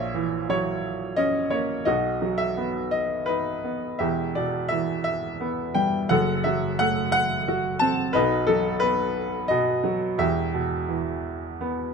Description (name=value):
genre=classical, lyrical solo piano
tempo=86 BPM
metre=3/4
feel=uneven beats, rubato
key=E minor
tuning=A4 = 440 Hz
part: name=bright baby grand piano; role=solo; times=0.0-11.9 s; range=E1 to A5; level=-22 LUFS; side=equal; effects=none
room=light reverb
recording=none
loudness=-22 LUFS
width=side -5 dB against mid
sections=0.0-11.9 A section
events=none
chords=0.0 F#7/A#; 1.9 B; 4.0 Em; 6.1 F#dim; 8.1 B; 10.2 Em